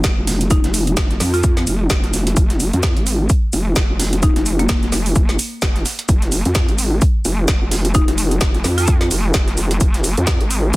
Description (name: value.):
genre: bass house.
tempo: 129 BPM.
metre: 4/4.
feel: swing 57% on 16ths.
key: F minor.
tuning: A4 = 441 Hz.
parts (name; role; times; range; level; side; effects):
vowel-sweep wobble bass; bass; 0.0-10.7 s; F1 to F2; -18 LUFS; equal; chorus, overdrive, sidechain pumping.
breakbeat sampler-style drum kit; drums; 0.0-10.8 s; hi-hat, shaker, snare drum; -29 LUFS; left 1 dB; high-pass filter on perc, high-pass filter on snare, high-pass filter on hats.
electronic kick drum; drums; 0.0-10.8 s; none; -16 LUFS; equal; none.
garage drum kit; drums; 0.0-10.8 s; hi-hat, snare drum; -22 LUFS; right 1 dB; overdrive.
buzzing marimba with medium hard mallets; melody; 0.5-4.8, 7.9-9.2 s; Bb3 to F4; -24 LUFS; left 1 dB; dub echo.
room: digital ambience.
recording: dense, heavily limited modern master.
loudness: -14 LUFS.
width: side -20 dB against mid.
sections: 0.0-10.8 A section.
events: filter sweep on wobble bass 0.0-10.8.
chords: none.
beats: 0.04 | 0.51 0.97 1.44 1.90 | 2.37 2.83 3.30 3.76 | 4.23 4.69 5.16 5.62 | 6.09 6.55 7.02 7.48 | 7.95 8.41 8.88 9.34 | 9.81 10.27 10.74.